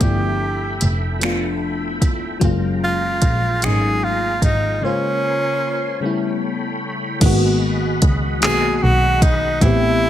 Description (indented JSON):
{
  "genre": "slow six-eight R&B",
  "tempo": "50 BPM (dotted quarters)",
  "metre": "6/8",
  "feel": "straight",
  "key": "unclear",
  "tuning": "A4 = 440 Hz",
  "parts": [
    { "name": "breathy tenor saxophone", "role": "melody", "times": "0.0-10.1 s", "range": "C#4 to G#4", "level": "-20 LUFS", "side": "right 1 dB", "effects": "ping-pong delay" },
    { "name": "FM electric piano with soft pad layer", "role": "accompaniment", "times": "0.0-10.1 s", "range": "C#3 to B#4", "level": "-22 LUFS", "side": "left 2 dB", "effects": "chorus" },
    { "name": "tonewheel organ", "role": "sustained chords", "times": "0.0-10.1 s", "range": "C#4 to B#5", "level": "-29 LUFS", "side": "equal", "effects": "chorus vibrato, slow rotary speaker" },
    { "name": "dark double bass", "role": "bass", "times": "0.0-10.1 s", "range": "F1 to C#2", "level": "-21 LUFS", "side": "equal", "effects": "none" },
    { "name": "smooth R&B drum kit", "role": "drums", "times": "0.0-9.8 s", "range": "crash cymbal, finger snaps, handclaps, hi-hat, kick drum", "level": "-19 LUFS", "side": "equal", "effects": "none" }
  ],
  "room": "little or no reverb",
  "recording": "none",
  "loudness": "-16 LUFS",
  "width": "side -11 dB against mid",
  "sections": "0.0-7.2 A section; 7.2-10.1 B section",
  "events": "break 4.8-7.2",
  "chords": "0.0 G13; 2.4 F#maj9; 4.8 A#m9; 6.0 A9; 7.2 G#m7"
}